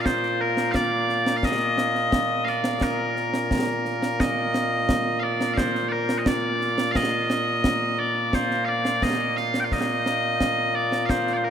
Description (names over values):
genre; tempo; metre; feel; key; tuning
scottish traditional, Scottish pipe music; 87 BPM; 2/4; straight; Bb major; A4 = 439 Hz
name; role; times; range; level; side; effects
loud bright bagpipes; melody; 0.0-11.5 s; Bb2 to G5; -22 LUFS; equal; none
concert snare drum and concert bass drum; drums; 0.1-11.4 s; none; -27 LUFS; equal; none
room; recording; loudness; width
wet cathedral reverb, RT60 4.8 s; in a vast, echoing space; -21 LUFS; side -8 dB against mid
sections
0.0-4.2 A section; 4.2-11.5 A section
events
none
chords
none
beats
| 0.06 0.75 | 1.44 2.13 | 2.82 3.51 | 4.20 4.88 | 5.58 6.26 | 6.95 7.64 | 8.33 9.02 | 9.71 10.40 | 11.09